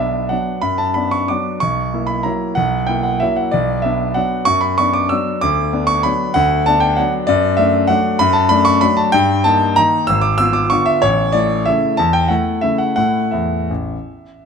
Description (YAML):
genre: classical, piano waltz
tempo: 161-203 BPM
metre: 3/4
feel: rubato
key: B minor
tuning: A4 = 444 Hz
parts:
  - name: warm concert grand piano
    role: solo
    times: 0.0-14.5 s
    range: G#1 to E6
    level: -14 LUFS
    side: equal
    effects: none
room: moderate recital hall reverb, RT60 1.6 s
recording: close, detailed microphones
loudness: -14 LUFS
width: side -6 dB against mid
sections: 0.0-14.5 A section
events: none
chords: 0.0 Bm; 1.6 F#7/B; 3.5 Bm; 5.4 Bm/D; 7.3 D/F#; 9.1 Eb/G; 10.1 G#dim7; 11.0 A